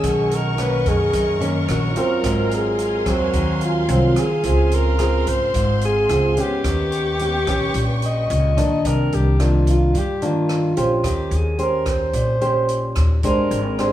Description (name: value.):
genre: bossa nova.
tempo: 109 BPM.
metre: 4/4.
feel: straight.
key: C minor from 8.8 s.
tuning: A4 = 440 Hz.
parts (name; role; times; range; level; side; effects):
breathy alto saxophone; melody; 0.0-13.9 s; E#4 to D#5; -22 LUFS; equal; none.
nylon-string guitar; accompaniment; 0.0-13.9 s; F#2 to C5; -22 LUFS; equal; none.
warm symphonic string section; sustained chords; 0.0-8.8 s; B#3 to C#6; -29 LUFS; left 1 dB; none.
upright bass; bass; 0.0-13.9 s; G#1 to G2; -21 LUFS; equal; none.
swinging big-band drum kit; drums; 0.0-13.9 s; hi-hat, kick drum, rim click; -28 LUFS; right 1 dB; none.
room: light reverb.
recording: small room reverb, faint mains hum.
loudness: -17 LUFS.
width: side -12 dB against mid.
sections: 0.0-8.8 A section; 8.8-13.9 B section.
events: none.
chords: 0.0 Bmaj9; 2.2 G#13; 4.4 C#maj7; 6.6 D#7b13; 8.8 Cm9; 11.0 Eb6; 13.2 Abmaj9#11.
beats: | 0.04 0.59 1.14 1.69 | 2.24 2.79 3.34 3.89 | 4.44 4.99 5.54 6.09 | 6.64 7.20 7.75 8.29 | 8.85 9.39 9.94 10.49 | 11.04 11.59 12.14 12.69 | 13.24 13.79.